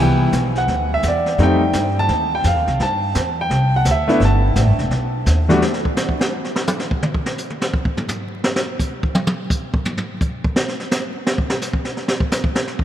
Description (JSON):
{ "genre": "jazz piano trio", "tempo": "170 BPM", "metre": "4/4", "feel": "swing 65% on 8ths", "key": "G major", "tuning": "A4 = 441 Hz", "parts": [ { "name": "clear grand piano", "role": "melody", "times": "0.0-5.6 s", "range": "E2 to A5", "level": "-19 LUFS", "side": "equal", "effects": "none" }, { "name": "upright bass", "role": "bass", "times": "0.0-5.6 s", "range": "E1 to G2", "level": "-18 LUFS", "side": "equal", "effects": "none" }, { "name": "jazz brush drum kit", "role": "drums", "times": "0.3-12.8 s", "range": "brushed snare drum, hi-hat, kick drum, snare drum, toms", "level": "-21 LUFS", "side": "equal", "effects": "none" } ], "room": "wet cathedral reverb, RT60 5.5 s", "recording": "in a vast, echoing space, vinyl crackle", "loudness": "-16 LUFS", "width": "side -11 dB against mid", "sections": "0.0-5.6 A section; 5.6-12.8 A section", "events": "grand piano solo 0.0-5.6; drum solo 5.6-12.8", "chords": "0.0 Cmaj9; 1.4 F9; 2.8 Gsus2; 4.9 B; 5.6 N.C." }